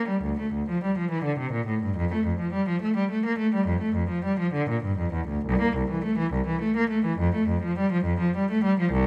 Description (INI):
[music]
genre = classical, baroque-style suite movement for unaccompanied cello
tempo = 69 BPM (dotted quarters)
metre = 12/8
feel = rubato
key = unclear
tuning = A4 = 440 Hz
[part]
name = rich cello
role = solo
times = 0.0-9.1 s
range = C2 to Bb3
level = -26 LUFS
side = equal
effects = none
[sound]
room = moderate recital hall reverb, RT60 1.3 s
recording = close, detailed microphones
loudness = -26 LUFS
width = mono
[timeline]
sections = 0.0-9.1 A section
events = none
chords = none